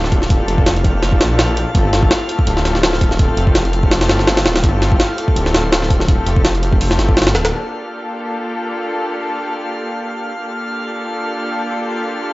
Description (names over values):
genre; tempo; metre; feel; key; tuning
drum and bass, jungle; 166 BPM; 4/4; swing 55% on 16ths; G minor; A4 = 440 Hz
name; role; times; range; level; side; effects
muted studio string section; sustained chords; 0.0-12.3 s; A3 to A4; -22 LUFS; left 1 dB; none
detuned saw bass; bass; 0.0-7.5 s; D1 to Bb1; -18 LUFS; equal; none
jungle sampler-style drum kit; drums; 0.0-7.5 s; hi-hat, kick drum, snare drum; -14 LUFS; equal; none
drifting glass-harmonics texture; texture; 0.0-12.3 s; F5 to F6; -28 LUFS; right 1 dB; chorus, built-in reverb
room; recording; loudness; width
light reverb; dry, gritty hardware recording, cassette tape, nothing above 7.8 kHz; -14 LUFS; side -19 dB against mid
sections
0.0-7.5 A section; 7.5-12.3 B section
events
drop 0.0-7.5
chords
0.0 Gm7; 1.7 Fadd9; 7.5 Gm7